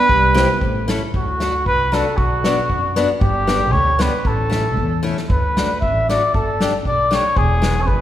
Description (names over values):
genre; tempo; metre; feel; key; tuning
alpine folk, alpine dance band; 116 BPM; 2/4; straight; D major; A4 = 439 Hz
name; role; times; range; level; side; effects
mellow trumpet; melody; 0.0-8.0 s; F#4 to E5; -18 LUFS; equal; none
dark euphonium; second line; 0.0-1.1 s; G3 to B3; -25 LUFS; right 3 dB; none
upright bass; bass; 0.1-8.0 s; E1 to F#2; -21 LUFS; equal; none
unplugged drum kit; drums; 0.1-8.0 s; kick drum, snare drum; -22 LUFS; equal; none
picked steel-string acoustic guitar; accompaniment; 0.3-7.7 s; G#3 to A4; -24 LUFS; left 3 dB; none
room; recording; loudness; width
moderate concert hall reverb, RT60 2.1 s; recorded in a church or concert hall; -15 LUFS; side -12 dB against mid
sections
0.0-1.1 A section; 1.1-8.0 B section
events
drum fill 5.0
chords
0.1 C; 0.6 A; 1.1 D; 2.2 Bm; 3.2 G; 4.3 A; 5.3 D6; 6.3 Gsus2; 7.4 E